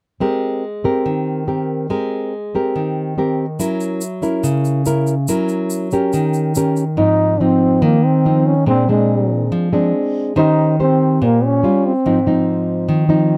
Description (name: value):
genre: bossa nova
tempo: 142 BPM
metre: 4/4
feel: straight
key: Ab major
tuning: A4 = 441 Hz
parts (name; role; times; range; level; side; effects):
- nylon-string guitar; accompaniment; 0.2-13.4 s; Ab2 to C5; -18 LUFS; equal; none
- tube shaker; percussion; 3.6-7.0 s; none; -32 LUFS; equal; none
- mellow trombone; melody; 7.0-12.5 s; Ab3 to Eb4; -18 LUFS; equal; none
room: moderate booth ambience, RT60 0.2 s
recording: dry, close 1970s-style studio recording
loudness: -17 LUFS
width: mono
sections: 0.2-7.0 A section; 7.0-13.4 B section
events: none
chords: 0.2 Abmaj9; 3.6 Gb7; 6.1 Eb7; 7.0 Ab6; 8.7 Bb9; 9.9 Ab; 10.4 Eb6; 11.6 Dbmaj7#11/G; 12.1 Ab6